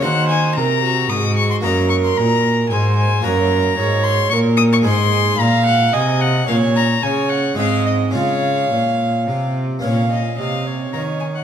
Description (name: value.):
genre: classical, baroque-style sonata movement with continuo.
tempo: 111 BPM.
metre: 3/4.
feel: straight.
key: Db major from 3.2 s.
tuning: A4 = 440 Hz.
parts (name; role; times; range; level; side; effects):
rich violin; melody; 0.0-11.4 s; Db5 to Eb6; -21 LUFS; left 7 dB; none.
warm violin; second line; 0.0-11.4 s; Gb4 to F5; -21 LUFS; right 5 dB; none.
harpsichord; accompaniment; 0.0-11.4 s; Gb2 to Eb5; -24 LUFS; left 2 dB; none.
rich cello; bass; 0.0-11.4 s; Gb2 to Eb3; -18 LUFS; equal; none.
room: wet recital hall reverb, RT60 1.5 s.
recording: none.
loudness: -14 LUFS.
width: side -8 dB against mid.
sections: 0.0-9.8 A section; 9.8-11.4 A section.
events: none.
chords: 0.0 Ebm; 1.6 Ebm/Gb; 3.2 Gb; 4.8 Ab; 6.5 Bbm; 7.6 Ab7; 8.1 Db; 9.8 Bbm.